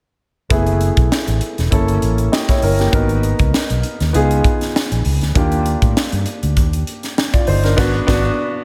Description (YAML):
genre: polished 1980s jazz-funk pop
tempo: 99 BPM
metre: 4/4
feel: swing 54% on 16ths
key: unclear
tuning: A4 = 438 Hz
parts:
  - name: warm grand piano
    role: accompaniment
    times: 0.5-8.6 s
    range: A3 to D#5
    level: -22 LUFS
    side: equal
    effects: lush chorus, slapback echo
  - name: fretless electric bass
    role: bass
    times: 0.5-8.3 s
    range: E1 to A2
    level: -20 LUFS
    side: equal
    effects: none
  - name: crisp fusion drum kit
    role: drums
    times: 0.5-8.3 s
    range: crash cymbal, hi-hat, kick drum, snare drum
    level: -20 LUFS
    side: equal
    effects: none
room: light reverb, studio reverb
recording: none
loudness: -16 LUFS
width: mono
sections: 0.5-8.6 A section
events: band accent 7.8-8.6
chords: 0.5 F#m11; 1.7 Gdim7; 2.9 G#m7; 4.1 C#9; 5.4 D#maj7; 7.8 G#m7b5